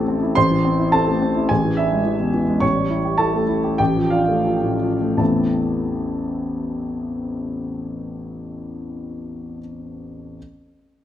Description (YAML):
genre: classical, virtuoso piano study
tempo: 79-108 BPM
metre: 2/4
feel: rubato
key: A minor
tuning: A4 = 440 Hz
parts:
  - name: warm grand piano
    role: solo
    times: 0.0-10.4 s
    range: A1 to C#6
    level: -19 LUFS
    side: equal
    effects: none
room: moderate recital hall reverb, RT60 1.5 s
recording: close, detailed microphones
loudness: -18 LUFS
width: side -11 dB against mid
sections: 0.4-5.2 A section; 5.2-8.1 B section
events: slowing down 2.1-5.2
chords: 0.4 Am; 1.5 E7/A; 2.6 A7; 3.8 Dm/A; 5.2 Am